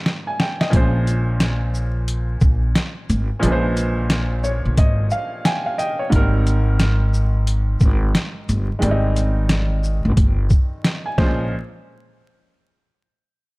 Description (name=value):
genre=hip hop, boom-bap hip-hop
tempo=89 BPM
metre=4/4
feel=swing 63% on 16ths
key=Bb dorian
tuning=A4 = 439 Hz
part: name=warm upright piano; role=accompaniment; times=0.0-11.5 s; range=Ab2 to Ab5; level=-24 LUFS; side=equal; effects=cassette tape, high-pass filter, low-pass filter
part: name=boom bap sampler-style drum kit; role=drums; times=0.1-11.4 s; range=hi-hat, kick drum, shaker, snare drum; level=-18 LUFS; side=equal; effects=none
part: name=upright bass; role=bass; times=0.7-11.5 s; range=G1 to Bb1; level=-19 LUFS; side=equal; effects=none
room=small room ambience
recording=dark, warm production, vinyl crackle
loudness=-17 LUFS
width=side -23 dB against mid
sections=0.0-11.5 A section; 11.5-13.6 B section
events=drum fill 0.0-0.7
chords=0.0 Abmaj7; 0.7 Bbm9; 6.1 Abmaj7; 11.2 Bbm9; 11.5 N.C.